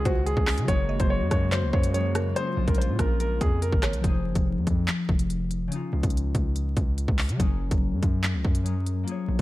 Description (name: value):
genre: hip hop, drill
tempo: 143 BPM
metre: 4/4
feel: half-time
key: unclear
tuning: A4 = 440 Hz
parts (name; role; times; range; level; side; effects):
- concert harp; accompaniment; 0.0-9.4 s; Db3 to Db5; -31 LUFS; left 4 dB; low-pass filter
- hollow soft pad; sustained chords; 0.0-4.0 s; Db3 to Gb4; -34 LUFS; right 2 dB; chorus
- hard-hitting 808-style bass; bass; 0.0-9.4 s; F1 to Db3; -27 LUFS; equal; none
- clear concert grand piano; melody; 0.1-4.0 s; Gb4 to Db5; -30 LUFS; equal; low-pass filter, ping-pong delay
- mallet-like synth pluck; second line; 0.1-4.0 s; Bb4 to Eb5; -37 LUFS; equal; chorus, ping-pong delay
- drill drum kit; drums; 0.1-9.4 s; handclaps, hi-hat, kick drum, rim click; -25 LUFS; equal; none
room: digital ambience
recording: dark, warm production, vinyl crackle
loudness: -23 LUFS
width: side -17 dB against mid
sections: 0.0-4.0 A section; 4.0-9.4 B section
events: none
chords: 0.0 Dbadd9; 0.7 Gbadd9; 2.4 Bbm7; 4.0 Fm7; 5.7 Dbadd9; 7.4 Gbadd9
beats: 0.26 | 0.68 1.10 1.52 1.94 | 2.36 2.78 3.20 3.62 | 4.04 4.46 4.88 5.30 | 5.72 6.14 6.56 6.98 | 7.40 7.82 8.23 8.65 | 9.07